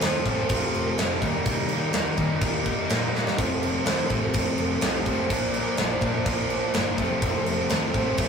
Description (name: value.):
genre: quiet-loud alternative rock.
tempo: 125 BPM.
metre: 4/4.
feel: straight.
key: unclear.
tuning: A4 = 441 Hz.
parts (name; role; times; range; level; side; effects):
fuzz guitar; riff; 0.0-8.3 s; F2 to F4; -25 LUFS; equal; distortion.
picked electric bass; bass; 0.0-8.3 s; F1 to Eb3; -33 LUFS; left 1 dB; none.
big rock drum kit; drums; 0.0-8.3 s; crash cymbal, kick drum, snare drum; -26 LUFS; right 1 dB; none.
room: wet booth ambience, RT60 0.2 s.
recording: rough rehearsal-room recording, warm saturation.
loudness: -22 LUFS.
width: side -6 dB against mid.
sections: 0.0-8.3 A section.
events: drum fill 3.1.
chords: 0.0 F7; 1.2 Eb; 3.4 F; 5.3 Bb; 7.0 F7.